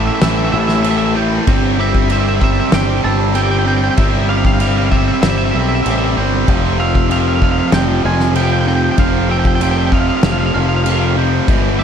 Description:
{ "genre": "post-rock", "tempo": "96 BPM", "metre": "4/4", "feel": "straight", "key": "unclear", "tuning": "A4 = 440 Hz", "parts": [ { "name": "electric guitar at the edge of break-up", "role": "melody", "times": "0.0-11.8 s", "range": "E5 to A5", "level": "-22 LUFS", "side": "right 3 dB", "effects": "slapback echo" }, { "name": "glockenspiel with hard plastic mallets", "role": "arpeggios", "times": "0.0-11.8 s", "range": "D6 to G6", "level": "-27 LUFS", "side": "right 7 dB", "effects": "slapback echo" }, { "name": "distorted electric guitar", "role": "riff", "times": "0.0-11.8 s", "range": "E2 to C4", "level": "-19 LUFS", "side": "right 14 dB", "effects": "overdrive" }, { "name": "tight distorted guitar", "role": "riff", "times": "0.0-11.8 s", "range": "E2 to C4", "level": "-20 LUFS", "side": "left 15 dB", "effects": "distortion" }, { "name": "growling fingered electric bass", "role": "bass", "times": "0.0-11.8 s", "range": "F1 to B1", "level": "-17 LUFS", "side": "left 1 dB", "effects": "overdrive" }, { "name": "loose indie drum kit", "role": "drums", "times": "0.2-11.6 s", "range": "crash cymbal, kick drum, snare drum", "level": "-18 LUFS", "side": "equal", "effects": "none" } ], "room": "studio reverb", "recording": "dark, warm production", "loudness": "-12 LUFS", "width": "side -8 dB against mid", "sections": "0.0-11.8 A section", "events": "none", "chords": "0.0 A5; 1.5 C/G; 6.5 F5" }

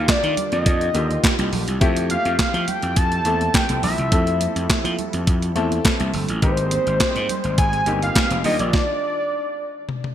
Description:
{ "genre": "early-eighties boogie funk", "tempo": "104 BPM", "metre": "4/4", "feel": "straight", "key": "F major", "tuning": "A4 = 438 Hz", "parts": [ { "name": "fat analog lead", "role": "melody", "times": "0.0-10.1 s", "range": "C5 to A5", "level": "-23 LUFS", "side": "equal", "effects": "digital delay" }, { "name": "clear baby grand piano", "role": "accompaniment", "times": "0.0-8.7 s", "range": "D3 to A4", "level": "-27 LUFS", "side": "left 4 dB", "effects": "none" }, { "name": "lush unison pad", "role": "sustained chords", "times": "0.0-8.7 s", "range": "D3 to A4", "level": "-32 LUFS", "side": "right 1 dB", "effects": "chorus" }, { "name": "gritty slap bass", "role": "bass", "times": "0.0-8.7 s", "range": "F1 to F3", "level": "-23 LUFS", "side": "equal", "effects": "overdrive" }, { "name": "clean 12-bit digital drum machine", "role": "drums", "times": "0.1-10.1 s", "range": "handclaps, hi-hat, kick drum, snare drum, toms", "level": "-20 LUFS", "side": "equal", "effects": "gated reverb" }, { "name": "congas", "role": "percussion", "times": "0.1-8.6 s", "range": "none", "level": "-33 LUFS", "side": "right 7 dB", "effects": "none" } ], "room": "moderate plate reverb, RT60 1.9 s", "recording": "bright 1980s-style digital production", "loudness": "-18 LUFS", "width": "side -10 dB against mid", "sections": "0.0-10.1 A section", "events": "stop 8.7-10.1; drum fill 9.9", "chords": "0.0 Ebmaj9; 1.8 Fmaj9; 6.4 Abmaj9; 8.4 Ebmaj9" }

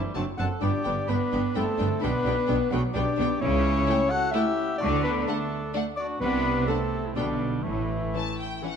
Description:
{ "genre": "cinematic, playful, whimsical film cue", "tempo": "128 BPM", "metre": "3/4", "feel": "straight", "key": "G major, D major from 3.4 s", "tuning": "A4 = 440 Hz", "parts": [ { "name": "concert flute", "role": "second line", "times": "0.0-8.6 s", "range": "D5 to F#6", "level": "-34 LUFS", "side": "left 4 dB", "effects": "none" }, { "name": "mellow cor anglais", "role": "second line", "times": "0.0-8.6 s", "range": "G3 to A4", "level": "-35 LUFS", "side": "right 2 dB", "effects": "none" }, { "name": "warm clarinet", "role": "second line", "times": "0.0-8.6 s", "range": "D4 to F#5", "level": "-32 LUFS", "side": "left 2 dB", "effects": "none" }, { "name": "warm French horn section", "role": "sustained chords", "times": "0.0-8.6 s", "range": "D3 to F#4", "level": "-30 LUFS", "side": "left 4 dB", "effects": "none" }, { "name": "rich studio violin section", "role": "melody", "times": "0.1-8.8 s", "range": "F#5 to A5", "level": "-39 LUFS", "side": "left 5 dB", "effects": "none" }, { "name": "clear studio viola section", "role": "accompaniment", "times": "0.1-8.7 s", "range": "E3 to C4", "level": "-34 LUFS", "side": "right 1 dB", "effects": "none" }, { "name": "clear studio violin section", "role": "second line", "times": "0.2-8.7 s", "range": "C#4 to E4", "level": "-37 LUFS", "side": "left 4 dB", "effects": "none" }, { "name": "bright studio cello section", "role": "bass", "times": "0.2-8.0 s", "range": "F#2 to D3", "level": "-32 LUFS", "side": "right 4 dB", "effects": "none" }, { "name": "rich studio double bass section", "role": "bass", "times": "0.2-8.1 s", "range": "F#1 to D2", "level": "-31 LUFS", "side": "right 4 dB", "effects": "none" } ], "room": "moderate scoring stage reverb, RT60 2.0 s", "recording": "dark, warm production", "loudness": "-23 LUFS", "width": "side -7 dB against mid", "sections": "0.0-8.8 A section", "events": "none", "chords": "0.0 D7/F#; 0.6 G; 2.0 G/B; 3.4 A7/C# (rootless); 4.8 D; 6.2 D7(no3)/C; 7.2 G/B; 7.6 A5" }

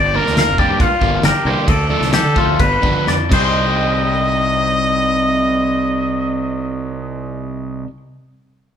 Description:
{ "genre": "math rock and midwest emo", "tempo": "119-141 BPM", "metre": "4/4", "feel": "straight", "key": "C minor", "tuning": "A4 = 440 Hz", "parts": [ { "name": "warm trumpet", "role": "melody", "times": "0.0-7.8 s", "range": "F4 to Eb5", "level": "-20 LUFS", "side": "right 1 dB", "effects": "none" }, { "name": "twangy electric guitar", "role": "arpeggios", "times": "0.0-8.0 s", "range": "F4 to C6", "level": "-19 LUFS", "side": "left 6 dB", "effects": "spring reverb" }, { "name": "fuzz fingered electric bass", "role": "bass", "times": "0.0-7.8 s", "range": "F1 to D3", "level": "-21 LUFS", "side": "equal", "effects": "overdrive" }, { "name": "crunchy overdriven guitar", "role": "riff", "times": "0.1-7.9 s", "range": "C3 to G4", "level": "-21 LUFS", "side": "right 1 dB", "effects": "none" }, { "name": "loose indie drum kit", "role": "drums", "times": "0.3-3.4 s", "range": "crash cymbal, kick drum, snare drum", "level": "-19 LUFS", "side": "equal", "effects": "none" } ], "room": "moderate large studio reverb, RT60 1.3 s", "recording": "band playing live in one room", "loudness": "-14 LUFS", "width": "side -8 dB against mid", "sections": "0.0-3.6 A section; 3.6-7.6 B section", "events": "slowing down 0.0-3.6; drum fill 3.1-3.6", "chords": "0.0 Gm7; 1.7 Dm7; 2.6 G7; 3.3 Cm" }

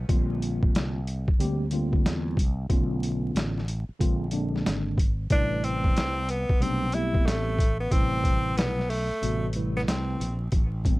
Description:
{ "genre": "hip hop, jazz-hop", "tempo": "92 BPM", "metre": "4/4", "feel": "swing 65% on 16ths", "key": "unclear", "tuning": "A4 = 439 Hz", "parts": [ { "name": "fretless electric bass", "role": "bass", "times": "0.0-11.0 s", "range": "Ab1 to E2", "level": "-30 LUFS", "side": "equal", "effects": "none" }, { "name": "mellow tine electric piano", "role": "accompaniment", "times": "0.1-11.0 s", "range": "C3 to B4", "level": "-30 LUFS", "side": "equal", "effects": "medium stereo tremolo" }, { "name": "boom bap sampler-style drum kit", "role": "drums", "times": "0.1-11.0 s", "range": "hi-hat, kick drum, snare drum", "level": "-25 LUFS", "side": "equal", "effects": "overdrive" }, { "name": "bright tenor saxophone", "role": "melody", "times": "5.3-10.4 s", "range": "A3 to E4", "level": "-29 LUFS", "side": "equal", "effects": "tape echo" } ], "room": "little or no reverb", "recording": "dark, warm production, vinyl crackle", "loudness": "-24 LUFS", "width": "side -20 dB against mid", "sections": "0.0-10.5 A section", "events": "break 9.2-10.5", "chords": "0.1 Bb6; 2.7 Bm7b5; 4.0 Bb9; 5.3 Am7" }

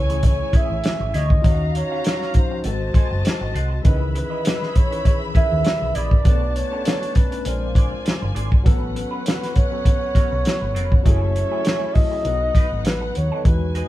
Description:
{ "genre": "lush 1970s-style soul", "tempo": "100 BPM", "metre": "4/4", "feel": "swing 54% on 16ths", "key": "unclear", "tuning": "A4 = 440 Hz", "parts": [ { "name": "breathy flugelhorn", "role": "melody", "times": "0.0-13.9 s", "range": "B4 to E5", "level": "-26 LUFS", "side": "right 1 dB", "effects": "tape echo" }, { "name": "dark studio string section", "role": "second line", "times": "0.0-13.9 s", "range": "C#4 to B5", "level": "-32 LUFS", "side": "left 1 dB", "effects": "none" }, { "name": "tine electric piano", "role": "accompaniment", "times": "0.0-13.9 s", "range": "D#3 to C#5", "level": "-30 LUFS", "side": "left 3 dB", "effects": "medium stereo tremolo" }, { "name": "hollow-body short-scale fingered electric bass", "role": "bass", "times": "0.0-13.8 s", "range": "F1 to E2", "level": "-24 LUFS", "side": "equal", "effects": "none" }, { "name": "electric guitar through a small old amp", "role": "riff", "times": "0.1-13.9 s", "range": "A3 to G#5", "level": "-34 LUFS", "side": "right 2 dB", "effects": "wah" }, { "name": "warm soul drum kit", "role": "drums", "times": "0.1-13.9 s", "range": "hi-hat, kick drum, snare drum", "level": "-18 LUFS", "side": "equal", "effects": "none" } ], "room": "light reverb", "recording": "band playing live in one room", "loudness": "-17 LUFS", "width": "side -15 dB against mid", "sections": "0.0-13.5 A section", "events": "none", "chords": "0.0 Amaj7; 1.4 D#m9; 2.6 G#7b9; 3.9 C#m9; 6.3 Bm9; 7.5 A#9; 8.7 A69; 11.1 F#m9; 12.3 B7" }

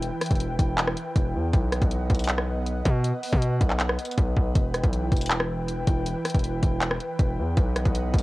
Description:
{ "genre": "hip hop, trap", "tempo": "159 BPM", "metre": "4/4", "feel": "half-time", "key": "E harmonic minor", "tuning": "A4 = 442 Hz", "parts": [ { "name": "airy breathy pad", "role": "sustained chords", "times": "0.0-8.2 s", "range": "E3 to G5", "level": "-31 LUFS", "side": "equal", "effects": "chorus, cassette tape" }, { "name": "distorted 808-style bass", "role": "bass", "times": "0.0-8.2 s", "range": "E1 to B2", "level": "-26 LUFS", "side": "equal", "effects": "distortion" }, { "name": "trap drum kit", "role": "drums", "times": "0.0-8.2 s", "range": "handclaps, hi-hat, kick drum, rim click", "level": "-24 LUFS", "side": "equal", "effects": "cassette tape" } ], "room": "little or no reverb", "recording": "home recording on cassette", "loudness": "-22 LUFS", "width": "side -19 dB against mid", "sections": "0.0-8.2 A section", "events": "none", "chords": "0.0 Em; 1.5 B; 4.6 Em; 7.6 B" }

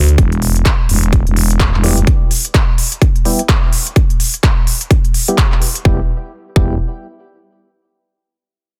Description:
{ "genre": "bass house", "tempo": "127 BPM", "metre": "4/4", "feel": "swing 59% on 16ths", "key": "E minor", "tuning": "A4 = 440 Hz", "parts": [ { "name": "growling FM bass", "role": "bass", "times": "0.0-2.1, 5.9-6.8 s", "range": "E1 to D2", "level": "-15 LUFS", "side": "equal", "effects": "tube saturation, sidechain pumping" }, { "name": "big-room dance drum kit", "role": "drums", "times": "0.1-5.8 s", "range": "handclaps, hi-hat", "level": "-21 LUFS", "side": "equal", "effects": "overdrive" }, { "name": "electronic kick drum", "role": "drums", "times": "0.2-6.7 s", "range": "none", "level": "-15 LUFS", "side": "equal", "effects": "overdrive" }, { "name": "percussive organ stab", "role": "stabs", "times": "1.8-6.7 s", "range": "G3 to G4", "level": "-24 LUFS", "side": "equal", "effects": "subtle chorus, sidechain pumping, digital delay" } ], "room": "digital ambience", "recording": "dense, heavily limited modern master", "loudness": "-14 LUFS", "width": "mono", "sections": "0.0-5.9 A section; 5.9-7.7 B section", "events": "filter sweep on synth stab 0.0-5.9", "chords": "0.0 Em" }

